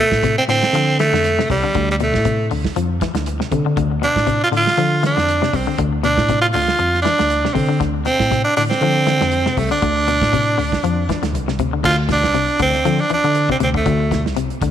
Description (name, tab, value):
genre	afrobeat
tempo	119 BPM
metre	4/4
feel	swing 55% on 16ths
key	D dorian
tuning	A4 = 440 Hz
part	raspy tenor saxophone	melody	0.0-14.2 s	G3 to F4	-17 LUFS	right 2 dB	none
part	twangy electric guitar	arpeggios	0.0-14.7 s	B2 to F3	-23 LUFS	left 10 dB	tape echo
part	tine electric piano	bass	0.1-14.7 s	C2 to D3	-21 LUFS	equal	none
part	damped 70s drum kit	drums	0.1-14.7 s	crash cymbal, hi-hat, kick drum, snare drum	-25 LUFS	right 4 dB	none
room	moderate echo chamber reverb, RT60 2.1 s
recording	1960s-style stereo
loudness	-15 LUFS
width	side -10 dB against mid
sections	0.0-11.8 A section; 11.8-14.7 B section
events	none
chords	0.0 Dm7; 11.8 D7(no3)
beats	0.23 0.73 1.24 | 1.75 2.25 2.76 3.26 | 3.77 4.27 4.78 5.28 | 5.79 6.29 6.80 7.30 | 7.81 8.31 8.82 9.32 | 9.83 10.33 10.84 11.34 | 11.85 12.35 12.85 13.36 | 13.86 14.37